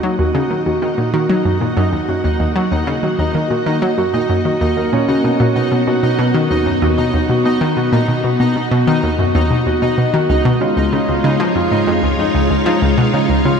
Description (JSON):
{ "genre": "ambient, sequencer-driven space music", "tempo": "95 BPM", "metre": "4/4", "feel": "straight", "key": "Eb minor", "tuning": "A4 = 440 Hz", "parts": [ { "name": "string machine, full ensemble", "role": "sustained chords", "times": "0.0-13.6 s", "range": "Ab3 to Gb5", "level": "-20 LUFS", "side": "left 1 dB", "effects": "ensemble chorus, shimmer reverb" }, { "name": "Celtic harp", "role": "arpeggios", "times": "0.0-13.6 s", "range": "Db4 to Eb5", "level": "-20 LUFS", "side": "right 1 dB", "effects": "auto-pan, analog delay, shimmer reverb" }, { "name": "analog pluck", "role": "riff", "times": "0.0-13.6 s", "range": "Db2 to Gb3", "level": "-17 LUFS", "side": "equal", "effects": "chorus, analog delay, shimmer reverb" }, { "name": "pulsing gated texture", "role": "texture", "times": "0.0-13.6 s", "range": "Eb4 to Eb5", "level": "-23 LUFS", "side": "left 1 dB", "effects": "chorus, built-in reverb, shimmer reverb" } ], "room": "moderate plate reverb, RT60 2.7 s", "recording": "dark, warm production", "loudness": "-13 LUFS", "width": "side -6 dB against mid", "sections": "0.0-13.6 A section", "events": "fade-in on string machine 0.0-13.6", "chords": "0.0 Ebm; 5.2 B; 10.3 Db" }